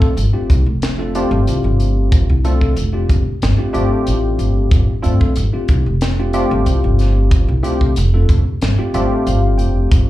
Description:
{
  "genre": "electric jazz fusion",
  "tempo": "92 BPM",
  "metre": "4/4",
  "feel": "straight",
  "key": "unclear",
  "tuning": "A4 = 439 Hz",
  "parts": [
    { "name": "tine electric piano", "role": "accompaniment", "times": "0.0-10.1 s", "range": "A3 to G5", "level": "-19 LUFS", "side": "left 1 dB", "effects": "analog chorus, slapback echo" },
    { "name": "crisp fusion drum kit", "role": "drums", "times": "0.0-10.1 s", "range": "hi-hat, kick drum, snare drum", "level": "-16 LUFS", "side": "equal", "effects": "none" },
    { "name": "upright bass", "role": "bass", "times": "0.2-10.1 s", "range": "F1 to G2", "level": "-16 LUFS", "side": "equal", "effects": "none" }
  ],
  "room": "little or no reverb",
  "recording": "live gig heard through the venue's PA, club reverb",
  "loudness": "-13 LUFS",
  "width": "side -15 dB against mid",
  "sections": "0.0-10.1 A section",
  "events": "tine electric piano fill 8.6-9.9",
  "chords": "0.0 G9sus4",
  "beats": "0.16 0.81 1.46 | 2.11 2.76 3.41 4.07 | 4.71 5.37 6.02 6.67 | 7.32 7.97 8.62 9.27 | 9.92"
}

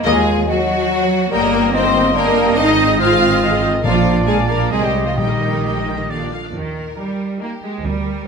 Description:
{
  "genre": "classical",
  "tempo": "141 BPM",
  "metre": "3/4",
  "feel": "rubato",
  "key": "Eb major",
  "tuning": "A4 = 441 Hz",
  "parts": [
    { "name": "dark bassoon", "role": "accompaniment", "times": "0.0-6.3 s", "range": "Gb3 to G4", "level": "-23 LUFS", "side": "right 2 dB", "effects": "none" },
    { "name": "rich symphonic viola section", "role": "accompaniment", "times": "0.0-7.7 s", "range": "D3 to C5", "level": "-27 LUFS", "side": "equal", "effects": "none" },
    { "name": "dark French horn section", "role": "sustained chords", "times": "0.0-6.1 s", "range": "Eb3 to F4", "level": "-21 LUFS", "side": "left 6 dB", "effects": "none" },
    { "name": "rich symphonic cello section", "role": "bass", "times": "0.0-8.3 s", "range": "Eb3 to F4", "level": "-22 LUFS", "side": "right 5 dB", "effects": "none" },
    { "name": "clear symphonic violin section", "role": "melody", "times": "0.1-7.7 s", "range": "Bb4 to G5", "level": "-26 LUFS", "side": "left 5 dB", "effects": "none" },
    { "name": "clear oboe", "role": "second line", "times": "0.1-6.3 s", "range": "D5 to Eb5", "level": "-26 LUFS", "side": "right 3 dB", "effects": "none" },
    { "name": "clear symphonic violin section", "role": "second line", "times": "0.1-8.3 s", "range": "Eb4 to F5", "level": "-23 LUFS", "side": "left 2 dB", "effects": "none" },
    { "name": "dark clarinet", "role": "second line", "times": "0.1-6.3 s", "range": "G3 to C4", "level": "-26 LUFS", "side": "left 1 dB", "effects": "none" },
    { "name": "hollow small flute group", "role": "second line", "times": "0.1-6.1 s", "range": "Eb5 to F6", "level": "-23 LUFS", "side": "left 5 dB", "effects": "none" },
    { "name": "rich symphonic double bass section", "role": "bass", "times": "0.1-8.2 s", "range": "G1 to Eb2", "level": "-22 LUFS", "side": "right 4 dB", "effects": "none" },
    { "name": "timpani", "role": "percussion", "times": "3.8-5.8 s", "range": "Bb2", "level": "-24 LUFS", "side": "left 4 dB", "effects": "none" }
  ],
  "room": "moderate scoring stage reverb, RT60 1.6 s",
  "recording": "none",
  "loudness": "-14 LUFS",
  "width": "side -5 dB against mid",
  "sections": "0.0-6.5 A section; 6.5-8.3 B section",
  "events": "none",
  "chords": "0.1 Ebm; 1.3 Eb/G; 2.6 Fm7/Ab; 3.8 Bb; 4.7 Ab/C; 5.2 Eb/Bb; 6.1 Bb; 6.5 Eb",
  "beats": "| 0.06 0.47 0.89 | 1.31 1.73 2.15 | 2.57 2.99 3.42 | 3.84 4.27 4.71 | 5.17 5.64 6.09 | 6.54 6.98 7.41 | 7.84"
}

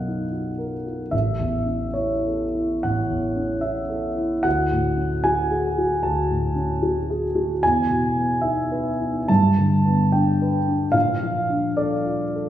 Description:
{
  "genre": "classical, impressionist solo piano",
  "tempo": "73 BPM",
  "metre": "4/4",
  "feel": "uneven beats, rubato",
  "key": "unclear",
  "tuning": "A4 = 439 Hz",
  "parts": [
    { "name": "warm grand piano", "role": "solo", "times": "0.0-12.5 s", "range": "A1 to A5", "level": "-20 LUFS", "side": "equal", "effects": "none" }
  ],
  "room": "wet recital hall reverb, RT60 1.7 s",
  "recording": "heard from further back in the room",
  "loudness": "-20 LUFS",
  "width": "side -12 dB against mid",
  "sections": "0.0-12.5 A section",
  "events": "none",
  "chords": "0.0 Bmaj7#11; 1.1 A; 4.5 Dmaj7#11; 7.6 Emaj7; 9.3 G; 10.9 A#maj7",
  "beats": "0.34 | 1.13 1.97 2.85 3.66 | 4.45 5.23 6.02 6.81 | 7.62 8.42 9.29 10.13 | 10.95 11.77"
}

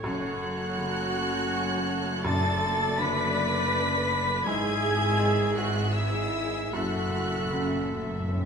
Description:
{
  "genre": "cinematic, emotional film score for orchestra",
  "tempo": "81 BPM",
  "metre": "3/4",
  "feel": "uneven beats, rubato",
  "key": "F# minor",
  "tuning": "A4 = 439 Hz",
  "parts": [
    { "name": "clear oboe", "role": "second line", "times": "0.0-8.5 s", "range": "C#5 to E5", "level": "-38 LUFS", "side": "equal", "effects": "none" },
    { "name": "clear symphonic violin section", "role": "second line", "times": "0.0-8.5 s", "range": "G#4 to E5", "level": "-37 LUFS", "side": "left 3 dB", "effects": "none" },
    { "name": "mellow hollow concert flute", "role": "second line", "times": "0.0-8.3 s", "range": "E5 to B5", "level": "-34 LUFS", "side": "left 1 dB", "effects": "none" },
    { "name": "warm clarinet", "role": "second line", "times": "0.0-8.5 s", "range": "G#4 to A4", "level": "-37 LUFS", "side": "equal", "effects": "none" },
    { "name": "clear baby grand piano", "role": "accompaniment", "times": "0.0-8.5 s", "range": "F#2 to G#3", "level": "-35 LUFS", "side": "equal", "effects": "none" },
    { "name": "clear symphonic viola section", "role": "accompaniment", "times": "0.0-8.3 s", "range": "E4 to B4", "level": "-33 LUFS", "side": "right 2 dB", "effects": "none" },
    { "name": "mellow French horn section", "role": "sustained chords", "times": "0.0-8.5 s", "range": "G#3 to E4", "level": "-36 LUFS", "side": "left 2 dB", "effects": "none" },
    { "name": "rich symphonic cello section", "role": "bass", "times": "0.0-8.5 s", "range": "F#2 to G#2", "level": "-35 LUFS", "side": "equal", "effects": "none" },
    { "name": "rich symphonic double bass section", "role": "bass", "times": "0.0-8.5 s", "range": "F#1 to G#1", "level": "-34 LUFS", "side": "right 2 dB", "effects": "none" },
    { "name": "timpani", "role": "percussion", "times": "0.0-3.3, 6.7-8.4 s", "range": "F#2", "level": "-34 LUFS", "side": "equal", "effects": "none" },
    { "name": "rich symphonic violin section", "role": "melody", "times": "0.1-8.3 s", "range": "E6 to B6", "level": "-32 LUFS", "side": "equal", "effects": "none" }
  ],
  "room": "wet recital hall reverb, RT60 1.4 s",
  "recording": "minimal, uncompressed stereo recording",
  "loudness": "-24 LUFS",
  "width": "side -6 dB against mid",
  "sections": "0.0-8.5 A section",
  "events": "timpani fill 6.7-8.5",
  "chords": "0.0 F#m; 2.3 Bm7/F#; 4.5 E/G#; 6.7 F#m7",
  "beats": "| 0.04 0.78 1.52 | 2.25 2.99 3.74 | 4.46 5.20 5.96 | 6.74 7.52 8.29"
}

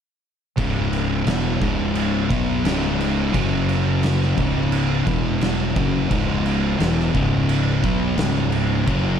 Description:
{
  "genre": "stoner and doom metal",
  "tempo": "87 BPM",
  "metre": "4/4",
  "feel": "straight",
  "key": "C# minor",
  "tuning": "A4 = 437 Hz",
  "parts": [
    { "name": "thick fuzz guitar", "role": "riff", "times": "0.6-9.2 s", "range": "C#2 to B3", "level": "-22 LUFS", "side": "left 7 dB", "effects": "distortion" },
    { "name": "thick fuzz guitar", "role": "riff", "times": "0.6-9.2 s", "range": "C#2 to B3", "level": "-24 LUFS", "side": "right 9 dB", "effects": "distortion" },
    { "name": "fuzz fingered electric bass", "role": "bass", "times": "0.6-9.2 s", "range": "C#1 to B1", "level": "-26 LUFS", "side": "equal", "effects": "overdrive" },
    { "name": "oversized low-tuned drum kit", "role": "drums", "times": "0.6-9.0 s", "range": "crash cymbal, kick drum, snare drum", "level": "-24 LUFS", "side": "right 1 dB", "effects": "none" }
  ],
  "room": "little or no reverb",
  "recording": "none",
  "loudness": "-18 LUFS",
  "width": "side -8 dB against mid",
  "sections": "0.6-9.2 A section",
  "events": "none",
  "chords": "0.6 C#m; 3.3 F#5; 4.4 C#5; 5.1 E5; 5.8 C#m",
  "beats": "| 0.58 1.27 1.96 2.65 | 3.34 4.03 4.72 5.41 | 6.10 6.79 7.49 8.18 | 8.87"
}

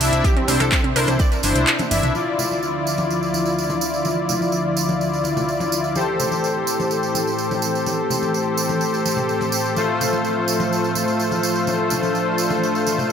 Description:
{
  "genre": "progressive house",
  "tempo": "126 BPM",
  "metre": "4/4",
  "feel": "straight",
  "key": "D minor",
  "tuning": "A4 = 440 Hz",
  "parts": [
    { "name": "lush unison pad", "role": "sustained chords", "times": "0.0-13.1 s", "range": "D2 to E5", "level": "-26 LUFS", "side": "right 2 dB", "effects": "chorus, sidechain pumping" },
    { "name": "wide unison pluck", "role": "arpeggios", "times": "0.0-2.1 s", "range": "C4 to D5", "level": "-26 LUFS", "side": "right 2 dB", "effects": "sidechain pumping, digital delay" },
    { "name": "soft supersaw", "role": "stabs", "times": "0.0-13.1 s", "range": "A3 to E5", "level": "-20 LUFS", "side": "left 2 dB", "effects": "sidechain pumping, digital delay" },
    { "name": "fat analog bass", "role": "bass", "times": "0.0-2.1 s", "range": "G1 to C2", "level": "-22 LUFS", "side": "equal", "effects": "sidechain pumping" },
    { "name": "deep house drum kit", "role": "drums", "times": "0.0-2.1 s", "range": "handclaps, hi-hat, rim click, toms", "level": "-24 LUFS", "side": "right 1 dB", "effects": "overdrive" },
    { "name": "tambourine", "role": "percussion", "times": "0.0-13.1 s", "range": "none", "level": "-28 LUFS", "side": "right 7 dB", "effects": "none" },
    { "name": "electronic kick drum", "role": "drums", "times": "0.2-1.3 s", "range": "none", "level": "-19 LUFS", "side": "equal", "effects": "none" },
    { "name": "congas", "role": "percussion", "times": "0.2-13.1 s", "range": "none", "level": "-31 LUFS", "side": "left 1 dB", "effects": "sidechain pumping on perc" }
  ],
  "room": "light reverb, digital ambience",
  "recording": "none",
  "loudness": "-18 LUFS",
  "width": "side -7 dB against mid",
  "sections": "0.0-2.1 A section; 2.1-13.1 B section",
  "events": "kick drops out 1.7-2.1; drum fill 1.8-2.1; filter sweep on analog synth pad 2.1-13.1",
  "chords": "0.0 Cadd9; 2.1 Dmadd9; 6.0 Am7; 9.8 F/A",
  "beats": "| 0.24 0.72 1.20 1.67 | 2.15 2.63 3.10 3.58 | 4.05 4.53 5.01 5.48 | 5.96 6.43 6.91 7.39 | 7.86 8.34 8.82 9.29 | 9.77 10.24 10.72 11.20 | 11.67 12.15 12.63 13.10"
}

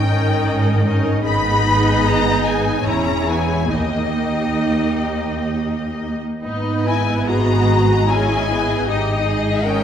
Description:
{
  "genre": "classical, slow romantic movement for string orchestra",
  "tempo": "65-78 BPM",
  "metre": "3/4",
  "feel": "rubato",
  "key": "G# minor",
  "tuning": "A4 = 440 Hz",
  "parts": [
    { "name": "clear symphonic violin section", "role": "melody", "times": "0.0-9.8 s", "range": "D#5 to B5", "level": "-22 LUFS", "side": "left 4 dB", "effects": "none" },
    { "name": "rich chamber violin section", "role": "second line", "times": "0.0-9.8 s", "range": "G4 to D#5", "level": "-24 LUFS", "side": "left 2 dB", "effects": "none" },
    { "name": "rich symphonic viola section", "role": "accompaniment", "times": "0.0-9.8 s", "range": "A#3 to F#4", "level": "-21 LUFS", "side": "right 2 dB", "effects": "none" },
    { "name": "rich symphonic double bass section", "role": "bass", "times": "0.0-9.8 s", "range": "E1 to D#2", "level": "-24 LUFS", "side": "right 1 dB", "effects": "none" },
    { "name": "warm symphonic cello section", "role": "bass", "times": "0.0-9.8 s", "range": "D#2 to G#2", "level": "-23 LUFS", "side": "equal", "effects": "none" }
  ],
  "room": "wet concert hall reverb, RT60 1.9 s",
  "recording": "heard from further back in the room",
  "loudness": "-16 LUFS",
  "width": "side -8 dB against mid",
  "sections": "0.0-9.8 A section",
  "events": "none",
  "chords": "0.0 D#7/G#; 1.3 G#m; 2.9 C#m/E; 3.7 D#; 6.4 G#m; 8.9 D#7/G#",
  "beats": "0.48 | 1.27 2.07 2.86 | 3.72 4.63 5.54 | 6.44 7.27 8.09 | 8.88 9.65"
}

